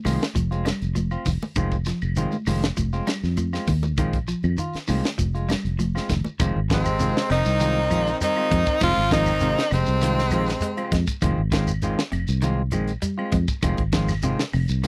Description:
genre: afrobeat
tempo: 100 BPM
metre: 4/4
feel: straight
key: F minor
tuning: A4 = 439 Hz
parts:
  - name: clean electric guitar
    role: arpeggios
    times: 0.0-14.9 s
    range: C3 to Ab3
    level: -32 LUFS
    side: equal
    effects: none
  - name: congas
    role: percussion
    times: 0.0-6.4 s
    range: none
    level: -34 LUFS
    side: equal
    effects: none
  - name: semi-hollow electric guitar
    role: stabs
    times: 0.1-14.9 s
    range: Eb3 to F4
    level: -30 LUFS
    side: equal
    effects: none
  - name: fingered electric bass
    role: bass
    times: 0.1-14.9 s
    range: F1 to F2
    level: -26 LUFS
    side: equal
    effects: none
  - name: tight funk drum kit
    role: drums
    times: 0.1-14.9 s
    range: hi-hat, kick drum, snare drum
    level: -30 LUFS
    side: equal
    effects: none
  - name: claves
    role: percussion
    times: 0.1-14.7 s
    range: none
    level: -43 LUFS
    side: equal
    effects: none
  - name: shekere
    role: percussion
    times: 0.1-14.9 s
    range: none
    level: -36 LUFS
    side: equal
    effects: none
  - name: edgy tenor saxophone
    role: melody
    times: 6.7-10.9 s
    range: C4 to F4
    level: -26 LUFS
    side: equal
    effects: slapback echo
  - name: breathy alto saxophone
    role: second line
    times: 6.7-10.9 s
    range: Ab3 to C4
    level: -34 LUFS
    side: equal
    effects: none
  - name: raspy baritone saxophone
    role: second line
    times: 6.7-10.9 s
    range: C3 to F3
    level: -35 LUFS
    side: equal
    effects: none
room: little or no reverb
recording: dry, close 1970s-style studio recording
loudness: -23 LUFS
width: mono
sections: 0.0-6.4 A section; 6.4-14.9 B section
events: none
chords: 0.0 Fm7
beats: 0.35 0.96 | 1.56 2.17 2.77 3.38 | 3.98 4.59 5.19 5.79 | 6.40 7.00 7.60 8.21 | 8.81 9.41 10.01 10.62 | 11.22 11.82 12.42 13.03 | 13.63 14.23 14.83

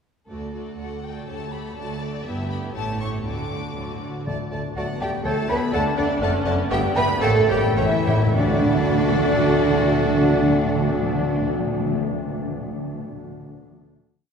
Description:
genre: quick classical-period movement for symphony orchestra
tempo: 100-125 BPM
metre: 2/4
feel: straight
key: D major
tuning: A4 = 435 Hz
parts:
  - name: rich chamber violin section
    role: second line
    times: 0.3-11.5 s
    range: F#4 to A5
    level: -34 LUFS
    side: left 2 dB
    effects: none
  - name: rich symphonic viola section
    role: accompaniment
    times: 0.3-11.5 s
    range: F#3 to G4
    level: -32 LUFS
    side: equal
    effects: none
  - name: rich chamber cello section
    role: bass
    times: 0.3-11.5 s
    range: D2 to B4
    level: -27 LUFS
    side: right 3 dB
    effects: none
  - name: rich chamber double bass section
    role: bass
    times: 0.3-11.5 s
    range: F#1 to D2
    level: -28 LUFS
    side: right 1 dB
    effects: none
  - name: rich chamber violin section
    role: melody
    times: 0.8-11.5 s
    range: D5 to D6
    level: -34 LUFS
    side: left 3 dB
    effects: none
  - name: dark clarinet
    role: second line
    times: 4.3-11.5 s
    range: C#5 to E5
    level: -32 LUFS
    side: left 2 dB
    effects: none
  - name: warm oboe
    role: second line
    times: 4.3-11.5 s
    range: F#5 to A5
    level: -34 LUFS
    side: left 1 dB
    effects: none
  - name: mellow bassoon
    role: accompaniment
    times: 4.3-11.5 s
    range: A3 to B3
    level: -30 LUFS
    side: right 2 dB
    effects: none
  - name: timpani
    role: percussion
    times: 4.3-12.1 s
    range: A2 to D3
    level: -25 LUFS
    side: left 1 dB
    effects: none
  - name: mellow silver concert flute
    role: second line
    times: 4.8-11.5 s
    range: D5 to B5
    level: -30 LUFS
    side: left 2 dB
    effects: none
  - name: mellow French horn section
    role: sustained chords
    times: 4.8-11.5 s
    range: D3 to D4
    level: -27 LUFS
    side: left 1 dB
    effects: none
room: wet cathedral reverb, RT60 6.9 s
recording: heard from further back in the room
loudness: -19 LUFS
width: side -6 dB against mid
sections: 0.3-4.3 A section; 4.3-8.4 A section; 8.4-10.7 final chord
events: slowing down 5.7-8.4; timpani fill 7.2-8.4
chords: 0.3 D; 1.3 A7/D; 1.8 D; 2.3 Em/G; 2.7 A7; 3.2 D; 5.3 A7/D; 5.7 D; 6.2 D/F#; 6.7 Em/G; 7.2 A7b9; 8.4 D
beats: | 0.29 0.79 | 1.28 1.77 | 2.25 2.75 | 3.25 3.76 | 4.27 4.77 | 5.25 5.73 | 6.21 6.71 | 7.22 7.77 | 8.36 8.95 | 9.54 10.14

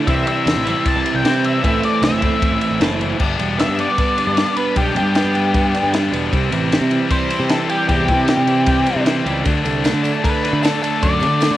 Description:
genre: indie rock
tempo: 153 BPM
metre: 4/4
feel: straight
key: unclear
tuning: A4 = 440 Hz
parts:
  - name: scooped high-gain guitar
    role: riff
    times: 0.0-11.6 s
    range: G2 to E4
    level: -22 LUFS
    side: left 6 dB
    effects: distortion, cassette tape
  - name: twelve-string electric guitar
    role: riff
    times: 0.0-11.6 s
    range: A2 to E4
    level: -21 LUFS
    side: right 5 dB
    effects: lush chorus, cassette tape
  - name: octave-fuzz lead guitar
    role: melody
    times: 0.1-11.6 s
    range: G4 to A5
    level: -21 LUFS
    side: left 2 dB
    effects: distortion, cassette tape
  - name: fuzz picked electric bass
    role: bass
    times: 0.1-11.6 s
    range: E1 to D3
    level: -21 LUFS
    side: equal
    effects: overdrive
  - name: compact cocktail drum kit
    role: drums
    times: 0.1-11.5 s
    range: crash cymbal, kick drum, ride cymbal, snare drum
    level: -21 LUFS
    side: equal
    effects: none
  - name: tambourine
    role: percussion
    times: 9.5-11.5 s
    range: none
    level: -39 LUFS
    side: right 12 dB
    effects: none
room: moderate studio reverb, RT60 0.6 s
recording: home recording on cassette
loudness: -15 LUFS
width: side -14 dB against mid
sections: 0.0-3.2 A section; 3.2-11.6 B section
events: lead electric guitar solo 3.2-11.6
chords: 0.1 C; 1.6 Am; 3.2 G; 6.3 C; 9.5 D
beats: | 0.07 0.46 0.85 1.24 | 1.63 2.02 2.41 2.80 | 3.19 3.58 3.98 4.37 | 4.76 5.15 5.54 5.93 | 6.32 6.72 7.11 7.50 | 7.89 8.28 8.68 9.07 | 9.46 9.85 10.24 10.63 | 11.02 11.41

